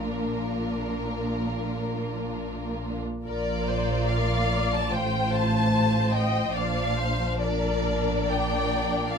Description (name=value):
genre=classical, slow romantic movement for string orchestra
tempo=66-76 BPM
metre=4/4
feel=rubato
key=Bb major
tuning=A4 = 438 Hz
part: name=warm symphonic violin section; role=melody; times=0.0-9.2 s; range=Bb4 to A5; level=-30 LUFS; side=left 2 dB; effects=none
part: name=warm symphonic violin section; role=second line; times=0.0-9.2 s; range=D4 to C5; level=-32 LUFS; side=equal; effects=none
part: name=warm symphonic viola section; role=accompaniment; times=0.0-9.2 s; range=Bb3 to Eb5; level=-31 LUFS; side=left 2 dB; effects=none
part: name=rich symphonic double bass section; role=bass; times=0.0-9.2 s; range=A1 to Bb1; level=-29 LUFS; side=right 2 dB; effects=none
part: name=warm symphonic cello section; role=bass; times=0.0-9.2 s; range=A2 to Bb2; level=-31 LUFS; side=equal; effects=none
room=light reverb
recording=close, detailed microphones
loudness=-24 LUFS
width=side -6 dB against mid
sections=0.0-3.3 A section; 3.3-9.2 A section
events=none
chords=0.0 Bb; 4.9 F/A; 6.5 Bb